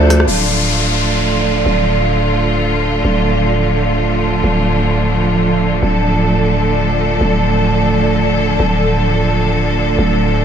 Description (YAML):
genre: drum and bass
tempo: free time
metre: none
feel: none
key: D minor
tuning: A4 = 440 Hz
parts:
  - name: bright studio string section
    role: sustained chords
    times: 0.0-10.4 s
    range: D3 to A4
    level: -16 LUFS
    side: right 1 dB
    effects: none
  - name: growling 808-style bass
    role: bass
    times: 0.0-10.4 s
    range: D1 to D2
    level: -16 LUFS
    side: equal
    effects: none
  - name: metallic inharmonic drone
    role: texture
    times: 0.0-10.4 s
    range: D4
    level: -21 LUFS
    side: right 4 dB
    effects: chorus, built-in reverb
  - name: downlifter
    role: sound effects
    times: 0.3-3.0 s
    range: none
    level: -21 LUFS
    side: left 2 dB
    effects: none
room: moderate plate reverb, RT60 2.2 s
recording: dreamy mix soaked in reverb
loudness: -12 LUFS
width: side -8 dB against mid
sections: 0.3-10.4 A section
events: none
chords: 0.3 Dm